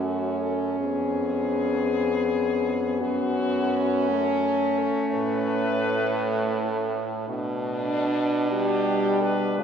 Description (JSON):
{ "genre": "classical, lyrical piece for horn quartet", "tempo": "47-59 BPM (dotted quarters)", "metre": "6/8", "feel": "rubato", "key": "F# minor", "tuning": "A4 = 444 Hz", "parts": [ { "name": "mellow French horn", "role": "melody", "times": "0.0-9.6 s", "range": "D4 to C#5", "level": "-28 LUFS", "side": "left 5 dB", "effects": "none" }, { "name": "warm French horn", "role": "second line", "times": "0.0-9.6 s", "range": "C#4 to D4", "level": "-27 LUFS", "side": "right 2 dB", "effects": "none" }, { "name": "mellow French horn", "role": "accompaniment", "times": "0.0-9.6 s", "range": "G3 to B3", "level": "-29 LUFS", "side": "left 2 dB", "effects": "none" }, { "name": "warm French horn", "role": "bass", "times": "0.0-9.6 s", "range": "E#2 to C#3", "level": "-30 LUFS", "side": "right 3 dB", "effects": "none" } ], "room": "wet church reverb, RT60 3.6 s", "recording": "heard from further back in the room", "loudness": "-22 LUFS", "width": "side -7 dB against mid", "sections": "0.0-9.6 A section", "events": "none", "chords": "0.0 F#m; 0.8 C#7/E#; 3.0 F#m; 5.2 Aadd9; 7.3 G/B" }